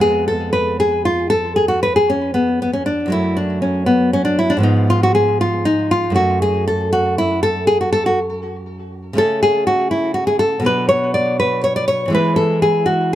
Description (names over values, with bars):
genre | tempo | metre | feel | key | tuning
classical, baroque-style dance for nylon-string guitar | 79 BPM (dotted quarters) | 12/8 | rubato | F# minor, A major from 9.2 s | A4 = 441 Hz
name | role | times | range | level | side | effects
nylon-string guitar | solo | 0.0-13.2 s | F2 to D5 | -14 LUFS | equal | none
room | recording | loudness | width
light reverb | none | -14 LUFS | side -12 dB against mid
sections
0.0-13.2 A section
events
none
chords
0.0 Fdim; 3.1 F#m; 4.6 Fdim/Ab; 6.2 F#m; 9.2 A/C#; 10.6 Bm; 12.1 E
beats
| 0.02 0.80 1.58 2.36 | 3.12 3.88 4.64 5.40 | 6.16 6.93 7.68 8.44 | 9.16 9.90 10.64 11.39 | 12.12 12.87